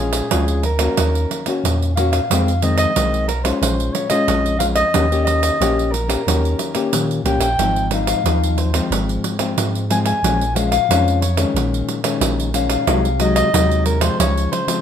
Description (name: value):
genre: samba and choro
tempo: 91 BPM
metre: 4/4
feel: straight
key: unclear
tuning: A4 = 440 Hz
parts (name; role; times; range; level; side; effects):
- breathy soprano saxophone; melody; 0.0-14.8 s; Ab4 to Ab5; -21 LUFS; left 1 dB; none
- nylon-string guitar; accompaniment; 0.0-14.8 s; F2 to G4; -21 LUFS; left 4 dB; none
- punchy sub bass; bass; 0.0-14.5 s; Ab1 to Eb3; -20 LUFS; equal; none
- pandeiro; percussion; 0.1-14.8 s; none; -22 LUFS; right 6 dB; none
room: moderate studio reverb, RT60 0.8 s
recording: minimal, uncompressed stereo recording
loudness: -15 LUFS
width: side -8 dB against mid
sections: 0.0-14.8 A section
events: none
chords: 0.0 Bbm7; 1.0 Ebm7; 2.3 Fm7; 3.6 Bbm7; 5.0 Eb7; 7.6 Ab6; 8.9 Fm/Ab; 10.2 Bbm7; 11.6 Eb7sus4/Bb; 12.9 Ab7/C; 14.2 Dbmaj7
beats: 0.32 0.98 1.65 | 2.31 2.97 3.63 4.29 | 4.95 5.61 6.27 6.93 | 7.59 8.25 8.91 9.57 | 10.24 10.90 11.56 12.22 | 12.88 13.54 14.20